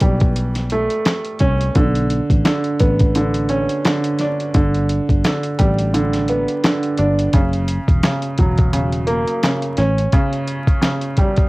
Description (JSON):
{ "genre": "hip hop, boom-bap hip-hop", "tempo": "86 BPM", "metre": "4/4", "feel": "swing 57% on 16ths", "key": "B minor", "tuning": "A4 = 435 Hz", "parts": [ { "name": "warm upright piano", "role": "accompaniment", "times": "0.0-11.5 s", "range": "C#3 to D4", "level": "-19 LUFS", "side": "right 1 dB", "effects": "cassette tape, high-pass filter, low-pass filter" }, { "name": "fingered electric bass", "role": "bass", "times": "0.0-10.1 s", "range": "E1 to C2", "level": "-19 LUFS", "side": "equal", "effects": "none" }, { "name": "dusty soul sampler-style drum kit", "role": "drums", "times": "0.0-11.5 s", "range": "handclaps, hi-hat, kick drum, snare drum", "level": "-17 LUFS", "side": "equal", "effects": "vintage 12-bit sampler grit, cassette tape" } ], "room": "light reverb", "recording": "home recording on cassette, vinyl crackle", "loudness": "-15 LUFS", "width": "side -21 dB against mid", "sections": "0.0-11.5 A section", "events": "kick muted 5.9-7.3", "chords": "0.0 A7; 1.8 Bmadd9; 4.5 G; 7.3 F#7; 9.8 A7", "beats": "0.36 1.06 | 1.75 2.45 3.15 3.85 | 4.55 5.24 5.94 6.64 | 7.34 8.03 8.73 9.43 | 10.13 10.82" }